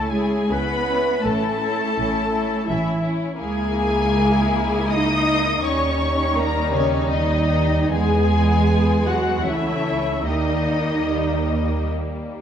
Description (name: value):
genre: classical, slow romantic movement for string orchestra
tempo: 71-85 BPM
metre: 3/4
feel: rubato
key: unclear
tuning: A4 = 440 Hz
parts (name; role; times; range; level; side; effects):
- warm symphonic violin section; melody; 0.0-11.9 s; C#5 to D#6; -25 LUFS; left 5 dB; none
- rich studio violin section; second line; 0.0-12.4 s; G3 to E4; -26 LUFS; left 2 dB; none
- rich symphonic viola section; accompaniment; 0.0-11.9 s; C#4 to D#5; -25 LUFS; equal; none
- rich symphonic cello section; bass; 0.0-11.9 s; C#3 to D#4; -24 LUFS; right 2 dB; none
- warm symphonic double bass section; bass; 0.0-12.4 s; A1 to E2; -24 LUFS; right 2 dB; none
room: moderate concert hall reverb, RT60 2.0 s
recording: dark, warm production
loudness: -18 LUFS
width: side -8 dB against mid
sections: 0.0-12.4 A section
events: none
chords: 0.0 C#m; 1.2 A; 3.4 A#m7b5/C#; 5.6 D#7; 7.9 E; 9.5 A/C#; 10.3 D#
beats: 0.49 | 1.24 1.96 2.68 | 3.39 4.12 4.90 | 5.64 6.38 7.11 | 7.92 8.69 9.46 | 10.25 11.09 11.92